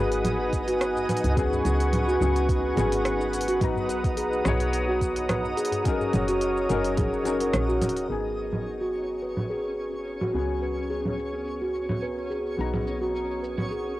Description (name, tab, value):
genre	organic downtempo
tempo	107 BPM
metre	4/4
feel	swing 54% on 16ths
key	G# minor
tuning	A4 = 440 Hz
part	felt-muted upright piano	accompaniment	0.0-14.0 s	F#3 to A#5	-32 LUFS	left 5 dB	sidechain pumping, cassette tape, analog delay
part	warm analog pad	sustained chords	0.0-14.0 s	B3 to D#6	-32 LUFS	equal	chorus, sidechain pumping, cassette tape
part	steel tongue drum	arpeggios	0.0-14.0 s	F#4 to B4	-28 LUFS	right 1 dB	low-pass filter, cassette tape, analog delay
part	woody FM bass	bass	0.0-14.0 s	D#1 to C#2	-30 LUFS	equal	sidechain pumping
part	twinkling granular texture	texture	0.0-14.0 s	C#4 to D#5	-39 LUFS	equal	built-in reverb, cassette tape
part	organic electronic drum kit	drums	0.1-13.8 s	congas, hi-hat, rim click, shaker	-31 LUFS	right 1 dB	overdrive, low-pass filter on hats, low-pass filter on perc, low-pass filter on snare
part	electronic kick drum	drums	0.5-7.1 s	none	-28 LUFS	equal	overdrive
part	djembe	percussion	0.7-7.9 s	none	-38 LUFS	left 3 dB	none
room	moderate booth ambience, RT60 0.2 s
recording	home recording on cassette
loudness	-24 LUFS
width	side -16 dB against mid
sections	0.0-8.1 A section; 8.1-14.0 B section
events	kick drops out 7.5-8.1; band accent 7.5; filter sweep on drum 8.1-14.0; filter sweep on analog synth pad 8.1-14.0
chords	0.0 G#m7; 3.6 Bmaj7; 5.9 F#6; 8.1 G#m7; 10.3 C#7sus4; 12.6 Bmaj7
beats	0.25 0.81 | 1.37 1.93 2.49 3.05 | 3.61 4.17 4.74 5.30 | 5.86 6.42 6.98 7.54 | 8.10 8.66 9.22 9.78 | 10.34 10.90 11.46 12.03 | 12.59 13.15 13.71